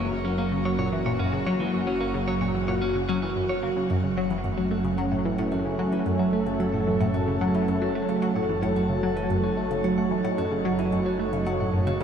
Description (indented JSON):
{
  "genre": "ambient, sequencer-driven space music",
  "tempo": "111 BPM",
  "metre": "4/4",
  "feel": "straight",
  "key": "F# dorian from 3.9 s",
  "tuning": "A4 = 440 Hz",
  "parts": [
    { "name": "sweeping resonant pad", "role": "sustained chords", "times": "0.0-12.0 s", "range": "F#3 to C#5", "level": "-26 LUFS", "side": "right 2 dB", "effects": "chorus" },
    { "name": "clean electric guitar", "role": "arpeggios", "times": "0.0-12.0 s", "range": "C#3 to F#5", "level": "-37 LUFS", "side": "right 1 dB", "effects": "auto-pan, tape echo" },
    { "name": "analog pluck", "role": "riff", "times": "0.0-12.0 s", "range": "F#2 to A#3", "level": "-27 LUFS", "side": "left 1 dB", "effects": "chorus, phaser, tape echo" },
    { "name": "fat analog bass", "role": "bass", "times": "0.0-12.0 s", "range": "F#1", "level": "-34 LUFS", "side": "equal", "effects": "none" },
    { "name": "electronic hi-hat and congas", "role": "percussion", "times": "3.9-12.0 s", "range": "none", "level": "-62 LUFS", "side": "left 3 dB", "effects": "none" }
  ],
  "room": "wet shimmer reverb, RT60 7.1 s",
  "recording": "played on a big sound system in a bare room, large studio reverb",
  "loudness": "-23 LUFS",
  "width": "side -8 dB against mid",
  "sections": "0.0-3.9 A section; 3.9-12.0 B section",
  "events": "none",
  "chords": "0.0 F#; 3.9 F#m",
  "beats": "0.11 0.65 1.19 | 1.74 2.27 2.82 3.36 | 3.90 4.44 4.98 5.52 | 6.06 6.60 7.14 7.68 | 8.22 8.76 9.30 9.84 | 10.38 10.92 11.46 12.01"
}